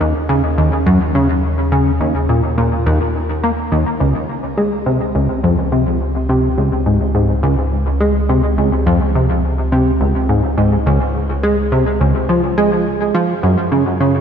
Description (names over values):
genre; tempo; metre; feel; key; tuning
ambient, sequencer-driven space music; 105 BPM; 4/4; straight; Db major; A4 = 441 Hz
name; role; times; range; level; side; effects
plucky analog bass; riff; 0.0-14.2 s; Db2 to Bb3; -14 LUFS; equal; wide subtle chorus, tape echo, shimmer reverb
warm sub bass; bass; 0.0-14.2 s; Db2 to Gb2; -20 LUFS; equal; none
room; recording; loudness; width
wet lush hall reverb, RT60 3.2 s; dreamy mix soaked in reverb; -13 LUFS; side -8 dB against mid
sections
0.0-14.2 A section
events
none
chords
0.0 Eb5; 4.0 Db5; 13.1 Gb5